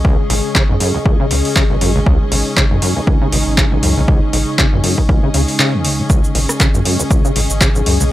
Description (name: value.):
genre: acid house.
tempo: 119 BPM.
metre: 4/4.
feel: swing 56% on 16ths.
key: unclear.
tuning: A4 = 439 Hz.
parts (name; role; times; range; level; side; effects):
warbly tape-like pad; sustained chords; 0.0-8.1 s; C#3 to G#4; -22 LUFS; left 1 dB; chorus, built-in reverb, sidechain pumping.
overdriven acid bass; riff; 0.0-8.0 s; B1 to C#3; -19 LUFS; equal; distortion, wide subtle chorus, analog delay.
warm sub bass; bass; 0.0-8.1 s; G#1 to F#2; -18 LUFS; equal; sidechain pumping.
electronic kick drum; drums; 0.0-7.7 s; none; -14 LUFS; equal; overdrive.
rich studio string section; texture; 0.0-8.1 s; C#4 to C#6; -25 LUFS; left 1 dB; sidechain pumping.
booming analog drum machine; drums; 0.3-8.1 s; handclaps, hi-hat, rim click, shaker; -18 LUFS; equal; overdrive.
room: little or no reverb.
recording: dry, gritty hardware recording.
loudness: -12 LUFS.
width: side -14 dB against mid.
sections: 0.0-8.1 A section.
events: filter sweep on acid bass 0.0-8.1.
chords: 0.0 C#5.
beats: | 0.05 0.55 1.06 1.56 | 2.06 2.57 3.07 3.58 | 4.08 4.59 5.09 5.59 | 6.10 6.60 7.11 7.61 | 8.12.